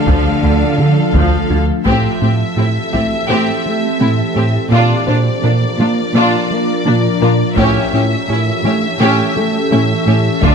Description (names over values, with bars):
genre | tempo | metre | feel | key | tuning
cinematic, hybrid orchestral and electronic film score | 84 BPM | 4/4 | straight | unclear | A4 = 440 Hz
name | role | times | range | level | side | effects
clear symphonic violin section | melody | 0.0-10.5 s | D5 to F5 | -22 LUFS | left 2 dB | none
warm symphonic violin section | second line | 0.0-10.5 s | D4 to A4 | -22 LUFS | left 2 dB | none
glassy FM pad | sustained chords | 0.0-10.5 s | E3 to Bb4 | -19 LUFS | equal | ensemble chorus, built-in reverb
mellow French horn section | sustained chords | 0.0-1.5 s | D4 | -21 LUFS | left 6 dB | none
rich symphonic cello section | bass | 0.0-10.5 s | A2 to D3 | -20 LUFS | right 2 dB | none
felt-muted upright piano | texture | 0.0-10.5 s | C#4 to E5 | -27 LUFS | left 5 dB | ping-pong delay
rich symphonic viola section | accompaniment | 0.1-10.5 s | D3 to D4 | -21 LUFS | right 1 dB | none
thumb-piano-like synth pluck | arpeggios | 0.1-10.5 s | D3 to Bb4 | -24 LUFS | left 5 dB | chorus, ping-pong delay
smooth gliding synth bass | riff | 0.1-10.5 s | D2 to Bb3 | -16 LUFS | right 2 dB | none
rich symphonic double bass section | bass | 0.1-1.6 s | D2 | -20 LUFS | right 2 dB | none
taiko ensemble | drums | 0.1-3.3, 7.6-10.5 s | none | -19 LUFS | equal | none
swell | sound effects | 10.5 s | none | -33 LUFS | equal | none
room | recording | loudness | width
light reverb | close, detailed microphones | -12 LUFS | side -6 dB against mid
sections
0.0-1.9 A section; 1.9-10.5 B section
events
none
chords
0.0 Dm; 1.9 Am7; 4.7 Bb; 7.6 A7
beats
0.43 1.15 | 1.86 2.57 3.29 4.00 | 4.72 5.43 6.15 6.86 | 7.57 8.29 9.00 9.72 | 10.43